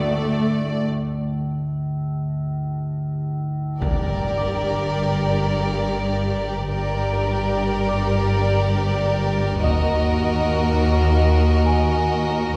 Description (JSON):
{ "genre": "cinematic, suspense film score", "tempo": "free time", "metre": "none", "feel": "none", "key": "G minor from 3.8 s", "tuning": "A4 = 440 Hz", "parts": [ { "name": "rich chamber violin section", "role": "melody", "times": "0.0-12.5 s", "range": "D5 to Eb5", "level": "-29 LUFS", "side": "equal", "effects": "none" }, { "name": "rich symphonic viola section", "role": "accompaniment", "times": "0.0-0.9 s", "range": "A3", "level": "-27 LUFS", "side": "equal", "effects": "none" }, { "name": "rich studio cello section", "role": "bass", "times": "0.0-12.6 s", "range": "D2 to G2", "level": "-28 LUFS", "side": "equal", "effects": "none" }, { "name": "metallic inharmonic drone", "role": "drone", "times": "0.0-12.6 s", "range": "G1 to Eb2", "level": "-29 LUFS", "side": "equal", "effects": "chorus, built-in reverb" }, { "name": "celesta", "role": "texture", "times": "0.0-12.6 s", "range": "Eb5 to Eb6", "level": "-33 LUFS", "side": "equal", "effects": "none" }, { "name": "rich chamber violin section", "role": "second line", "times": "3.8-12.5 s", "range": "Gb4 to Bb4", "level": "-27 LUFS", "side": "equal", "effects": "none" }, { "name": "dark chamber double bass section", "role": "bass", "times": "3.8-12.5 s", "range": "G1 to Eb2", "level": "-26 LUFS", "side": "equal", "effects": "none" }, { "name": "taiko ensemble", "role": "drums", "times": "3.8-4.9, 9.6-10.8 s", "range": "none", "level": "-31 LUFS", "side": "equal", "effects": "none" }, { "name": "impact", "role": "sound effects", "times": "3.8-6.7 s", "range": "none", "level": "-31 LUFS", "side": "equal", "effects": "none" } ], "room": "wet scoring stage reverb, RT60 1.8 s", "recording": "recorded in a church or concert hall", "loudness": "-21 LUFS", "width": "mono", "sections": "0.0-3.8 A section; 3.8-12.6 B section", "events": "break 0.9-3.8; impact 3.8-6.7", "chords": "0.0 D5; 3.8 Gm; 9.6 Ebm", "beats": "free time" }